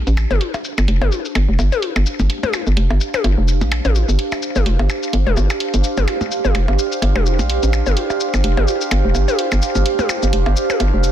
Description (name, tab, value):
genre	minimal techno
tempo	127 BPM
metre	4/4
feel	swing 57% on 16ths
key	unclear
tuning	A4 = 440 Hz
part	hollow knocking FM bass	bass	0.0-11.1 s	F1 to Bb1	-16 LUFS	equal	none
part	warbly tape-like pad	texture	0.0-11.1 s	D4 to F5	-22 LUFS	right 4 dB	chorus, built-in reverb
part	electronic hi-hat and shaker	drums	0.1-11.1 s	none	-26 LUFS	left 2 dB	overdrive, low-pass filter on perc, low-pass filter on hats, soft clipping on snare, low-pass filter on snare
part	electronic percussion blips and toms	percussion	0.2-10.9 s	none	-23 LUFS	left 5 dB	ping-pong delay
room	little or no reverb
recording	dense, heavily limited modern master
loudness	-15 LUFS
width	side -11 dB against mid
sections	0.0-11.1 A section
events	none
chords	0.0 G7(no3)